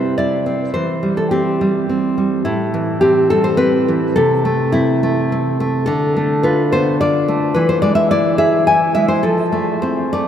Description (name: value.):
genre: romantic piece for solo classical guitar.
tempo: 105 BPM.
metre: 3/4.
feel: rubato.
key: unclear.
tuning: A4 = 441 Hz.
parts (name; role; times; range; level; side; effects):
nylon-string guitar; solo; 0.0-10.3 s; A2 to G#5; -14 LUFS; equal; none.
room: wet cathedral reverb, RT60 6.5 s.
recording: in a vast, echoing space.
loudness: -14 LUFS.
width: side -9 dB against mid.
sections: 0.0-10.3 A section.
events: none.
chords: 0.0 C; 0.7 C/E; 2.4 Am7; 4.2 Am/C; 5.9 Bm7b5/D; 7.6 E; 9.2 F.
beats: 0.17 | 0.74 1.31 1.88 | 2.45 3.02 3.61 | 4.18 4.74 5.31 | 5.89 6.45 7.01 | 7.56 8.11 8.67 | 9.23 9.82.